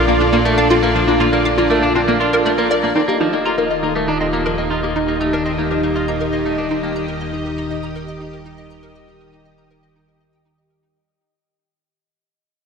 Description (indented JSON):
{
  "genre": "ambient, sequencer-driven space music",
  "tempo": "120 BPM",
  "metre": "4/4",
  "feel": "straight",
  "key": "unclear",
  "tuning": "A4 = 440 Hz",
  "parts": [
    { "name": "string machine, full ensemble", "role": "sustained chords", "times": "0.0-11.0 s", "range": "Eb3 to Eb5", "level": "-19 LUFS", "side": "equal", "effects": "ensemble chorus" },
    { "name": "clean electric guitar", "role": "arpeggios", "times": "0.0-6.9 s", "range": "F3 to F4", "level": "-21 LUFS", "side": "right 1 dB", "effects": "auto-pan, ping-pong delay" },
    { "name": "hollow square pluck", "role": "riff", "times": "0.0-10.9 s", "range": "Bb3 to Bb5", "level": "-20 LUFS", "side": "left 1 dB", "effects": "ensemble chorus, ping-pong delay" },
    { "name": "fat analog bass", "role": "bass", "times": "0.0-10.9 s", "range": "Eb1 to Bb1", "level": "-26 LUFS", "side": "equal", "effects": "none" },
    { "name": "bubbling stepped-filter texture", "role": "texture", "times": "0.0-11.0 s", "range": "D5 to Eb5", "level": "-26 LUFS", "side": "equal", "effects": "chorus, built-in reverb" }
  ],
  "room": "wet lush hall reverb, RT60 2.7 s",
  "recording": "dreamy mix soaked in reverb",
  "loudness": "-15 LUFS",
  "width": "side -6 dB against mid",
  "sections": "0.0-3.0 A section; 3.0-11.0 B section",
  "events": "fade-out on synth arpeggio sound 3.0-11.0; fade-out on analog synth bass 3.0-11.0; fade-out 3.0-11.0",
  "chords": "0.0 Bbmaj7; 3.0 Eb"
}